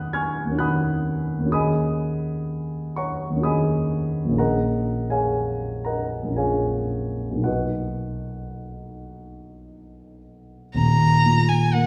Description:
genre	classical, impressionist duo for violin and grand piano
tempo	53-65 BPM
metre	3/4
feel	rubato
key	Eb minor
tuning	A4 = 440 Hz
part	dark concert grand piano	accompaniment	0.0-11.9 s	Eb1 to Ab6	-24 LUFS	equal	none
part	warm violin	melody	10.7-11.9 s	Gb5 to Bb5	-23 LUFS	equal	none
room	wet recital hall reverb, RT60 1.5 s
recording	heard from further back in the room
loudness	-23 LUFS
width	mono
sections	0.0-10.8 A section; 10.8-11.9 B section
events	none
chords	0.0 Ebm7; 1.5 Gb69/Eb; 4.4 Bbm7; 7.5 Bmaj7; 10.8 Eb5

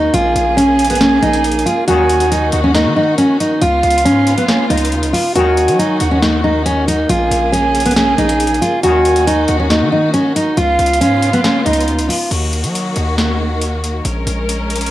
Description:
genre	hip hop, trap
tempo	138 BPM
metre	4/4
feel	half-time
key	Eb minor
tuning	A4 = 439 Hz
part	fingerpicked steel-string acoustic guitar	melody	0.0-12.3 s	Cb4 to Gb4	-14 LUFS	equal	analog delay
part	clear symphonic string section	sustained chords	0.0-14.9 s	Db3 to Bb4	-21 LUFS	left 1 dB	none
part	hard-hitting 808-style bass	bass	0.0-14.9 s	Bb1 to Gb3	-19 LUFS	equal	none
part	breathy concert flute	second line	0.1-11.9 s	Eb5 to Ab5	-20 LUFS	right 7 dB	analog delay
part	booming analog drum machine	drums	0.1-14.9 s	crash cymbal, hi-hat, snare drum	-20 LUFS	left 1 dB	cassette tape
part	bright brass ensemble	stabs	1.9-2.3, 5.4-5.8, 8.8-9.2 s	Gb2 to Eb3	-24 LUFS	left 8 dB	analog delay
room	light reverb, small room ambience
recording	home recording on cassette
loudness	-12 LUFS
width	side -14 dB against mid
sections	0.0-12.3 A section; 12.3-14.9 B section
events	none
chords	0.1 Bbm7; 1.9 Ebm; 3.6 Db7; 5.4 Ebm; 7.1 Bbm7; 8.8 Ebm; 10.6 Db7; 12.3 Ebm; 14.1 Bbm7

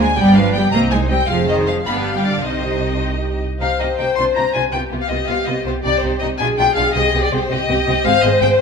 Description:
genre	quick classical-period movement for string orchestra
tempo	108 BPM (dotted quarters)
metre	6/8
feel	rubato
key	C minor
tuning	A4 = 440 Hz
part	rich chamber violin section	melody	0.0-8.5 s	B4 to C6	-20 LUFS	left 5 dB	none
part	rich studio violin section	second line	0.0-8.5 s	B3 to B5	-23 LUFS	left 2 dB	none
part	rich chamber viola section	accompaniment	0.0-8.6 s	B3 to C5	-20 LUFS	left 1 dB	none
part	rich chamber cello section	bass	0.0-8.5 s	Ab2 to B3	-21 LUFS	right 2 dB	none
part	rich chamber double bass section	bass	0.0-8.5 s	F1 to D2	-23 LUFS	right 3 dB	none
room	wet recital hall reverb, RT60 1.2 s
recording	minimal, uncompressed stereo recording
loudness	-15 LUFS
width	side -5 dB against mid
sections	0.0-3.6 A section; 3.6-8.6 A section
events	none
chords	0.2 G; 0.7 Cm; 1.3 Fm; 1.9 G7; 2.4 Cm; 4.7 G7/C; 6.4 Bdim7; 7.0 Cm; 8.1 Ab

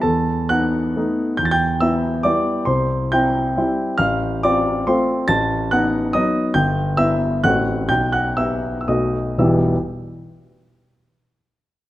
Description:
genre	classical, romantic triple-time dance for piano with dotted rhythms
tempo	110-150 BPM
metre	3/4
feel	rubato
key	E minor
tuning	A4 = 440 Hz
part	warm grand piano	solo	0.0-9.8 s	E1 to A6	-17 LUFS	equal	none
room	moderate recital hall reverb, RT60 1.5 s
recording	close, detailed microphones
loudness	-17 LUFS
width	side -15 dB against mid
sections	0.0-9.4 A section; 9.4-10.8 B section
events	slowing down 5.9-9.4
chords	0.0 B7/E; 1.4 Em; 2.7 C; 4.0 F/A; 5.3 B7/A; 6.5 Em/G; 7.4 F#dim/A; 7.9 Em/B; 8.9 B7; 9.4 Em

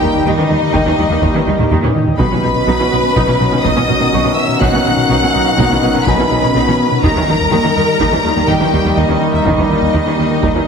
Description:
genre	cinematic, hybrid orchestral and electronic film score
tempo	124 BPM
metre	5/4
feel	straight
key	unclear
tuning	A4 = 440 Hz
part	warm symphonic violin section	melody	0.0-10.7 s	D#5 to F#6	-19 LUFS	left 3 dB	none
part	rich symphonic violin section	second line	0.0-10.7 s	D#4 to F#5	-20 LUFS	left 3 dB	none
part	rich symphonic viola section	accompaniment	0.0-10.6 s	D#3 to D#4	-21 LUFS	right 2 dB	none
part	chorused pulse-width pad	sustained chords	0.0-10.7 s	D#3 to D#5	-22 LUFS	equal	none
part	clear trombone section	sustained chords	0.0-10.7 s	D#3 to G3	-23 LUFS	right 2 dB	none
part	warm French horn section	sustained chords	0.0-10.7 s	A#3 to D#4	-21 LUFS	left 3 dB	none
part	harp-like synth pluck	arpeggios	0.0-10.6 s	D#3 to B4	-23 LUFS	right 4 dB	none
part	fat analog bass	riff	0.0-10.6 s	D#2 to B3	-19 LUFS	left 3 dB	none
part	rich symphonic cello section	bass	0.0-10.6 s	B2 to D#3	-22 LUFS	right 4 dB	none
part	rich symphonic double bass section	bass	0.0-10.5 s	B1 to D#2	-22 LUFS	right 4 dB	none
part	felt-muted upright piano	texture	0.0-10.7 s	D#5 to C#6	-29 LUFS	equal	none
part	taiko ensemble	drums	0.7-10.7 s	none	-22 LUFS	equal	none
room	wet recital hall reverb, RT60 1.3 s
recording	heavily compressed radio sound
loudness	-11 LUFS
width	side -6 dB against mid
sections	0.0-10.7 A section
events	drum fill 1.6-2.2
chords	0.0 D#; 2.2 Badd9; 7.0 D#

